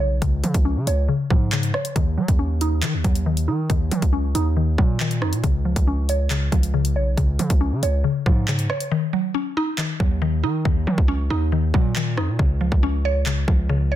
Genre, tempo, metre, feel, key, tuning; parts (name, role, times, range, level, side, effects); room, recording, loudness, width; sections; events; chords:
hip hop, drill; 138 BPM; 4/4; half-time; Eb minor; A4 = 443 Hz
mallet-like synth pluck; accompaniment; 0.0-14.0 s; Db3 to Db5; -23 LUFS; left 1 dB; chorus, low-pass filter
distorted 808-style bass; bass; 0.0-14.0 s; Cb2 to Gb3; -22 LUFS; equal; distortion
drill drum kit; drums; 0.2-13.6 s; handclaps, hi-hat, kick drum, rim click; -21 LUFS; equal
light reverb; dense, heavily limited modern master; -18 LUFS; side -12 dB against mid
0.0-14.0 A section
filter sweep on synth pluck 0.0-8.9; hi-hats muted 8.9-14.0; break 8.9-9.8
0.0 Db; 2.0 Ebm7; 5.4 Db; 8.9 Ebm7; 12.4 Db